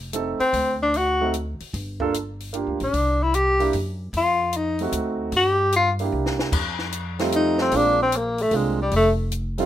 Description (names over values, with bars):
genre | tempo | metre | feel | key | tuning
jazz, small-group swing and bop | 150 BPM | 3/4 | swing 66% on 8ths | F mixolydian | A4 = 440 Hz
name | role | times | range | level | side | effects
upright bass | bass | 0.0-9.7 s | F1 to G2 | -27 LUFS | equal | none
warm concert grand piano | accompaniment | 0.1-9.7 s | G3 to A4 | -25 LUFS | right 4 dB | none
compact cocktail drum kit | drums | 0.1-9.6 s | crash cymbal, hi-hat, kick drum, snare drum | -30 LUFS | left 2 dB | none
warm tenor saxophone | melody | 0.4-9.1 s | G3 to G4 | -20 LUFS | left 1 dB | none
room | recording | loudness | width
light reverb | minimal, uncompressed stereo recording | -20 LUFS | side -12 dB against mid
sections
0.0-6.5 A section; 6.5-9.7 A section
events
drum fill 6.1-6.5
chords
0.0 F7; 0.5 D7; 1.7 Gm7; 2.9 Csus2; 4.1 F7; 4.9 D7b9; 5.3 Gm; 6.1 C9; 6.5 F9; 7.7 Bb9; 8.9 F